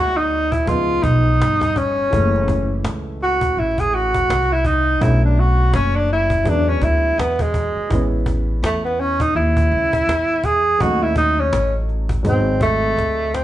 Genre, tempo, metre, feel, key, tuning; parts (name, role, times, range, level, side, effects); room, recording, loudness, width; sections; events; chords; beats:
hip hop, jazz-hop; 83 BPM; 4/4; swing 59% on 16ths; A4 = 438 Hz
breathy tenor saxophone; melody; 0.0-13.4 s; G#3 to G#4; -18 LUFS; equal
dark upright piano; accompaniment; 0.0-13.4 s; D3 to D5; -27 LUFS; right 1 dB
upright bass; bass; 0.0-13.4 s; F#1 to E2; -20 LUFS; equal
cajon; drums; 0.3-13.4 s; -26 LUFS; equal
moderate large studio reverb, RT60 1.1 s; band playing live in one room, vinyl crackle, nothing above 10.3 kHz; -15 LUFS; side -13 dB against mid
0.0-13.4 A section
tenor saxophone solo 0.0-13.4; drum fill 13.0-13.4
0.0 G#m7b5; 0.7 C#7; 2.1 F#m7; 5.0 Bm7; 6.5 E7; 7.9 Amaj7; 10.8 D#m7b5; 12.2 G#7
0.68 1.41 | 2.13 2.85 3.57 4.30 | 5.02 5.74 6.46 7.19 | 7.91 8.63 9.36 10.08 | 10.80 11.53 12.25 12.97